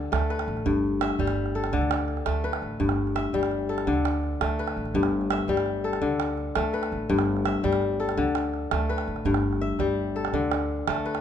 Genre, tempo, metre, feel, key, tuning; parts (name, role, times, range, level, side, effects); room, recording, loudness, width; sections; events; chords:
west african traditional, West African string and xylophone music; 112 BPM (dotted quarters); 12/8; straight; G major; A4 = 440 Hz
kora; arpeggios; 0.0-11.2 s; G2 to E5; -25 LUFS; left 3 dB
upright bass; bass; 0.0-11.2 s; G1 to D2; -31 LUFS; right 2 dB
calabash; percussion; 0.1-11.2 s; -31 LUFS; right 10 dB
moderate recital hall reverb, RT60 1.7 s; minimal, uncompressed stereo recording; -24 LUFS; side -9 dB against mid
0.0-11.2 A section
0.0 D5; 0.7 G; 1.7 D5; 2.8 G; 3.9 D5; 4.9 G; 6.0 D5; 7.1 G; 8.2 D5; 9.3 G; 10.3 D5